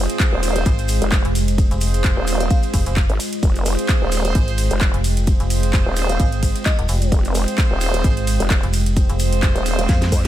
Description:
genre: bass house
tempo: 130 BPM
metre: 4/4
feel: swing 56% on 16ths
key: F minor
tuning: A4 = 439 Hz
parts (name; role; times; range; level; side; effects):
- deep dark ambient pad; sustained chords; 0.0-10.3 s; Ab3 to G5; -26 LUFS; right 1 dB; chorus, built-in reverb, sidechain pumping
- warm horn section; stabs; 0.0-10.3 s; C4 to C5; -27 LUFS; right 5 dB; sidechain pumping, digital delay
- vowel-sweep wobble bass; bass; 0.0-10.3 s; Eb1 to F2; -20 LUFS; equal; chorus, sidechain pumping
- house drum kit; drums; 0.1-10.3 s; handclaps, hi-hat, ride cymbal, snare drum; -26 LUFS; right 1 dB; studio reverb
- maracas; percussion; 0.1-10.3 s; none; -34 LUFS; left 3 dB; none
- electronic kick drum; drums; 0.2-10.2 s; none; -17 LUFS; equal; studio reverb
- metallic FM bass; bass; 0.7-10.1 s; Eb1 to F2; -20 LUFS; equal; overdrive, sidechain pumping
- glassy synth bell; melody; 2.4-2.6, 6.1-10.0 s; Eb5 to F5; -31 LUFS; equal; chorus, digital delay
room: little or no reverb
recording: none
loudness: -16 LUFS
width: side -13 dB against mid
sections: 0.0-10.3 A section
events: drum fill 9.9-10.3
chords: 0.0 Fm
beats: 0.20 0.66 1.12 | 1.58 2.04 2.50 2.97 | 3.43 3.89 4.35 4.81 | 5.27 5.74 6.20 6.66 | 7.12 7.58 8.04 8.51 | 8.97 9.43 9.89

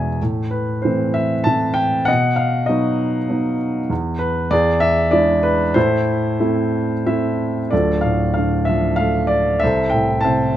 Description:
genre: classical, lyrical solo piano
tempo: 88-100 BPM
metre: 3/4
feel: rubato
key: A minor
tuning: A4 = 441 Hz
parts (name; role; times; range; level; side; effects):
- dark baby grand piano; solo; 0.0-10.6 s; D1 to A5; -16 LUFS; equal; none
room: light reverb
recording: close, detailed microphones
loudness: -16 LUFS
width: side -12 dB against mid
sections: 0.0-7.7 A section; 7.7-10.6 B section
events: grand piano fill 0.0, 6.7-7.7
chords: 0.2 Am; 2.1 B; 3.9 N.C.; 4.5 E7; 5.8 Am; 7.7 Dm; 9.6 Am/C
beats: | 0.20 0.84 1.47 | 2.08 2.69 3.30 | 3.91 4.51 5.13 | 5.76 6.40 7.06 | 7.72 8.36 9.00 | 9.62 10.24

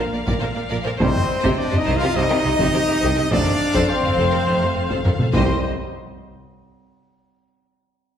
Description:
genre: cinematic, epic orchestral film score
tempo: 104 BPM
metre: 4/4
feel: straight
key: C minor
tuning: A4 = 440 Hz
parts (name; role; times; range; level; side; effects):
- rich symphonic violin section; melody; 0.0-5.7 s; Eb5 to F5; -29 LUFS; left 5 dB; none
- hollow concert flute; second line; 0.0-5.7 s; Bb4 to C6; -29 LUFS; left 2 dB; none
- rich symphonic violin section; second line; 0.0-5.7 s; Bb4 to D5; -30 LUFS; left 3 dB; none
- warm symphonic viola section; accompaniment; 0.0-5.7 s; G4 to Bb4; -31 LUFS; equal; none
- dark French horn section; sustained chords; 0.0-5.6 s; Bb3 to F4; -24 LUFS; left 1 dB; none
- dark trombone section; sustained chords; 0.0-5.6 s; C3 to A3; -33 LUFS; right 2 dB; none
- clear trumpet; stabs; 0.0-5.6 s; Bb4 to F5; -27 LUFS; equal; none
- clear symphonic cello section; bass; 0.0-5.7 s; C2 to C3; -26 LUFS; right 2 dB; none
- rich symphonic double bass section; bass; 0.1-5.7 s; F1 to C2; -26 LUFS; right 2 dB; none
- taiko ensemble; drums; 0.3-6.5 s; none; -23 LUFS; equal; none
- timpani; percussion; 1.0-1.8, 5.3-5.6 s; C3; -33 LUFS; left 1 dB; none
room: wet recital hall reverb, RT60 1.5 s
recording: recorded in a church or concert hall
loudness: -17 LUFS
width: side -9 dB against mid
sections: 0.0-5.6 A section; 5.6-8.0 B section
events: drum fill 5.1-5.6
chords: 0.0 Bb; 1.0 Cm; 3.3 F; 5.3 Cm; 5.6 N.C.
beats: 0.42 | 1.00 1.58 2.16 2.74 | 3.32 3.90 4.48 5.06 | 5.64 6.22

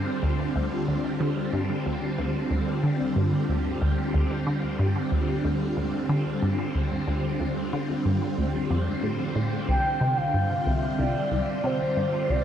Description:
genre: ambient, sequencer-driven space music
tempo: 92 BPM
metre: 4/4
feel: straight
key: D minor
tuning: A4 = 440 Hz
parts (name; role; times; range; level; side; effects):
- phased string machine; sustained chords; 0.0-12.4 s; D3 to F4; -27 LUFS; equal; ensemble chorus, phaser
- resonant blip pluck; riff; 0.0-12.4 s; C2 to D3; -26 LUFS; equal; chorus, phaser, cassette tape, tape echo
- expressive synth lead; melody; 9.7-12.4 s; C5 to G5; -26 LUFS; equal; analog chorus, tape echo
room: wet shimmer reverb, RT60 7.0 s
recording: dark, warm production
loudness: -24 LUFS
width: side -9 dB against mid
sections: 0.0-12.4 A section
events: none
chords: 0.0 Dm; 9.7 Csus2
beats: 0.56 1.21 | 1.86 2.51 3.16 3.82 | 4.47 5.12 5.77 6.42 | 7.08 7.73 8.38 9.03 | 9.69 10.34 10.99 11.64 | 12.29

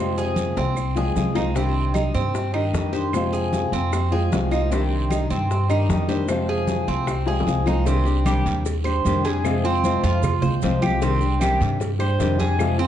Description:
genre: latin, Cuban son and guajira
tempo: 152 BPM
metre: 4/4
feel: straight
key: C minor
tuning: A4 = 440 Hz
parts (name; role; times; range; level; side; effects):
- nylon-string guitar; accompaniment; 0.0-12.9 s; C3 to G4; -24 LUFS; left 3 dB; none
- Cuban tres; arpeggios; 0.0-12.9 s; C4 to C5; -26 LUFS; right 3 dB; none
- upright bass; bass; 0.0-12.9 s; C2 to G2; -23 LUFS; equal; none
- bongos and cowbell; percussion; 0.2-12.8 s; none; -32 LUFS; left 4 dB; none
- congas; percussion; 0.2-12.9 s; none; -29 LUFS; right 1 dB; none
- maracas; percussion; 0.2-12.9 s; none; -44 LUFS; right 8 dB; none
- guiro; percussion; 0.4-12.9 s; none; -42 LUFS; right 7 dB; none
- claves; percussion; 0.8-12.8 s; none; -40 LUFS; right 4 dB; none
room: moderate large studio reverb, RT60 1.3 s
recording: dark, warm production, nothing above 10.9 kHz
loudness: -19 LUFS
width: side -10 dB against mid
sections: 0.0-7.9 A section; 7.9-12.9 B section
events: drum fill 0.0-1.6, 7.3-7.9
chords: 0.0 Fm; 1.6 Cmadd9; 3.1 Fm; 4.7 Cmadd9; 6.3 Fm; 7.9 Cmadd9; 9.4 Fm; 11.0 Cmadd9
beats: 0.37 0.77 1.16 | 1.56 1.95 2.35 2.74 | 3.13 3.53 3.92 4.32 | 4.71 5.11 5.50 5.90 | 6.29 6.69 7.08 7.48 | 7.87 8.26 8.66 9.05 | 9.45 9.84 10.23 10.63 | 11.02 11.41 11.81 12.20 | 12.59

